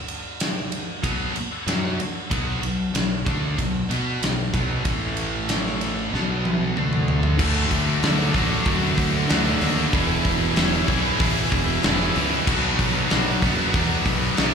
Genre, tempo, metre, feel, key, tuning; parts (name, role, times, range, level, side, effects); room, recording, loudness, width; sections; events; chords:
hard rock; 94 BPM; 4/4; straight; B dorian; A4 = 441 Hz
big rock drum kit; drums; 0.1-14.5 s; crash cymbal, hi-hat, kick drum, ride cymbal, snare drum, toms; -24 LUFS; equal
high-gain distorted guitar; riff; 1.0-14.5 s; E2 to B4; -25 LUFS; equal; distortion, slapback echo
fuzz fingered electric bass; bass; 1.0-14.5 s; E1 to B2; -26 LUFS; equal; overdrive
high-gain distorted guitar; riff; 7.4-14.5 s; B2 to G#4; -24 LUFS; equal; distortion, slapback echo
small room ambience; live gig heard through the venue's PA, club reverb; -20 LUFS; side -6 dB against mid
0.0-7.4 A section; 7.4-14.5 B section
drum fill 6.1-7.4
0.0 Bm; 4.9 A5; 6.1 B5; 6.8 D5; 7.4 D; 9.9 E; 12.5 Bm